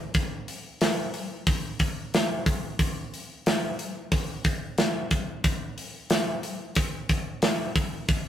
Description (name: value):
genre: metal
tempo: 91 BPM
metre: 4/4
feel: straight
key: none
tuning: none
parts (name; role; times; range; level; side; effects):
- tight metal drum kit; drums; 0.1-8.2 s; hi-hat, kick drum, snare drum; -25 LUFS; equal; none
room: light reverb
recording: rough rehearsal-room recording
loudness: -25 LUFS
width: side -10 dB against mid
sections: 0.0-8.3 A section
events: none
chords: none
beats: | 0.16 0.82 1.48 2.14 | 2.80 3.46 4.12 4.78 | 5.44 6.10 6.76 7.42 | 8.08